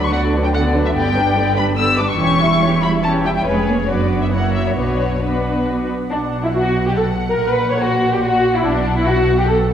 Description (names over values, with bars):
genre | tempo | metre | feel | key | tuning
quick classical-period movement for string orchestra | 142 BPM | 3/4 | rubato | B minor | A4 = 442 Hz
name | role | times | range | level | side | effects
muted studio violin section | melody | 0.0-9.7 s | B4 to E6 | -22 LUFS | left 4 dB | none
muted studio violin section | second line | 0.0-9.6 s | D4 to E5 | -21 LUFS | left 2 dB | none
muted studio viola section | accompaniment | 0.0-9.7 s | D3 to C#5 | -21 LUFS | right 1 dB | none
muted studio cello section | bass | 0.0-9.7 s | E2 to D3 | -22 LUFS | right 2 dB | none
muted studio double bass section | bass | 0.0-9.7 s | E1 to D2 | -22 LUFS | right 2 dB | none
room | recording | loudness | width
wet scoring stage reverb, RT60 1.8 s | heard from further back in the room | -14 LUFS | side -9 dB against mid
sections
0.0-6.1 A section; 6.1-9.7 B section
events
none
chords
0.0 Bm/D; 1.0 G; 2.2 C#dim/E; 3.5 C#7/E#; 3.9 Bm/F#; 4.3 F#7; 4.8 Bm; 6.1 B5; 7.4 F#/A#; 8.6 B5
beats
0.13 0.54 | 0.95 1.36 1.77 | 2.20 2.62 3.04 | 3.47 3.90 4.33 | 4.78 5.22 5.67 | 6.10 6.53 6.96 | 7.38 7.81 8.23 | 8.64 9.06 9.48